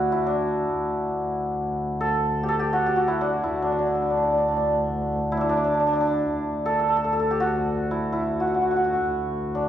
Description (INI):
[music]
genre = Persian modal ensemble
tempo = free time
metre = none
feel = none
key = D dastgah mahur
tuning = A4 = 440 Hz
[part]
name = santur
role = melody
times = 0.0-9.7 s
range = D4 to A4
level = -22 LUFS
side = equal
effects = none
[part]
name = dark double bass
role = drone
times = 0.0-9.7 s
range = D2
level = -30 LUFS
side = equal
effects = none
[sound]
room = wet recital hall reverb, RT60 1.4 s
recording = recorded in a church or concert hall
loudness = -21 LUFS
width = side -10 dB against mid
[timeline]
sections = 0.0-6.3 A section; 6.3-9.7 A section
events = none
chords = none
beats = free time